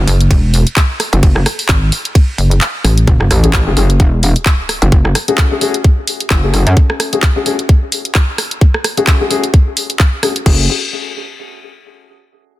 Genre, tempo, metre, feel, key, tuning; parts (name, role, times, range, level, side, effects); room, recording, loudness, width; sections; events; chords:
bass house; 130 BPM; 4/4; swing 56% on 16ths; F# minor; A4 = 440 Hz
metallic wobble bass; bass; 0.0-6.8, 10.5-10.7 s; E1 to F#2; -12 LUFS; equal; chorus, overdrive, sidechain pumping
pulsing pluck wobble bass; bass; 0.1-3.1 s; E1 to A1; -10 LUFS; equal; chorus, tube saturation, sidechain pumping
garage drum kit; drums; 0.1-10.6 s; crash cymbal, handclaps, hi-hat, ride cymbal, rim click; -17 LUFS; equal
electronic kick drum; drums; 0.3-10.6 s; -10 LUFS; equal
sub drop; sound effects; 3.1-4.9 s; -21 LUFS; equal
dark baby grand piano; stabs; 3.4-10.6 s; A3 to G#4; -18 LUFS; left 4 dB; sidechain pumping, low-pass filter, ping-pong delay
little or no reverb; dense, heavily limited modern master; -10 LUFS; side -16 dB against mid
0.0-3.1 A section; 3.1-10.5 B section; 10.5-12.3 C section
drop 0.0-3.1; kick drops out 2.6-3.1; impact 3.1-4.9
0.0 N.C.; 3.1 F#madd9